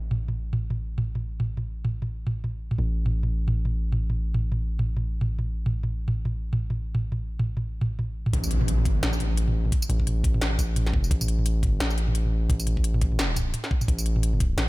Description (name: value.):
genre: half-time drum and bass.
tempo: 173 BPM.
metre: 4/4.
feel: swing 58% on 16ths, half-time.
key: unclear.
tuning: A4 = 443 Hz.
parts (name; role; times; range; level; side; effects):
long sustained 808-style bass; bass; 0.0-14.7 s; A1; -26 LUFS; equal; none.
industrial drum kit; drums; 0.1-14.7 s; hi-hat, snare drum, tambourine, toms; -28 LUFS; equal; low-pass filter on hats, small room reverb, low-pass filter on toms, low-pass filter on snare, low-pass filter on perc.
electronic kick drum; drums; 8.3-14.5 s; none; -25 LUFS; equal; small room reverb.
impact; sound effects; 8.3-9.7 s; none; -33 LUFS; equal; none.
room: digital ambience.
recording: none.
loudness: -23 LUFS.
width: side -20 dB against mid.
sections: 0.0-8.3 A section; 8.3-14.7 B section.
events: filter sweep on drum 0.0-8.3; drop 8.3-14.7; impact 8.3-9.7.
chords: none.